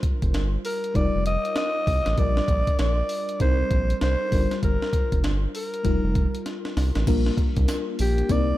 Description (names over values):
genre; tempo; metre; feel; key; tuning
R&B, new jack swing; 98 BPM; 4/4; swing 62% on 16ths; Bb major; A4 = 440 Hz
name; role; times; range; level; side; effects
FM electric piano with soft pad layer; accompaniment; 0.0-8.6 s; G3 to Bb4; -29 LUFS; left 3 dB; chorus
breakbeat sampler-style drum kit; drums; 0.0-8.5 s; crash cymbal, hi-hat, kick drum, snare drum, tambourine; -25 LUFS; equal; gated reverb
round analog bass; bass; 0.2-8.5 s; F1 to C2; -24 LUFS; equal; none
breathy alto saxophone; melody; 0.7-8.6 s; G4 to Eb5; -27 LUFS; equal; ping-pong delay
room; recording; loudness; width
little or no reverb; none; -21 LUFS; side -15 dB against mid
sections
0.0-7.1 A section; 7.1-8.6 B section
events
drum fill 6.5-7.1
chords
0.0 Gm7; 1.0 F9sus4; 2.2 Bb6; 3.4 Cm7; 4.3 Gm7; 5.8 F9sus4; 7.1 Bb6